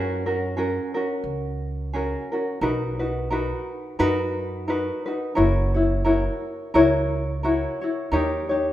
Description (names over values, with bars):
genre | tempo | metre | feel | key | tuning
Hawaiian | 87 BPM | 4/4 | swing 56% on 8ths | B major | A4 = 440 Hz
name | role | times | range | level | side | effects
tenor ukulele | accompaniment | 0.0-8.7 s | C#4 to C#5 | -22 LUFS | left 1 dB | none
upright bass | bass | 0.0-8.7 s | F#1 to F#2 | -27 LUFS | right 1 dB | none
room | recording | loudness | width
moderate recital hall reverb, RT60 1.8 s | minimal, uncompressed stereo recording | -21 LUFS | side -13 dB against mid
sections
0.0-2.6 A section; 2.6-8.7 B section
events
none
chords
0.0 F#add9; 2.6 Bmaj7; 5.4 F#7; 8.1 D#7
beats
0.57 1.26 1.94 | 2.63 3.32 4.00 4.69 | 5.38 6.06 6.75 7.43 | 8.12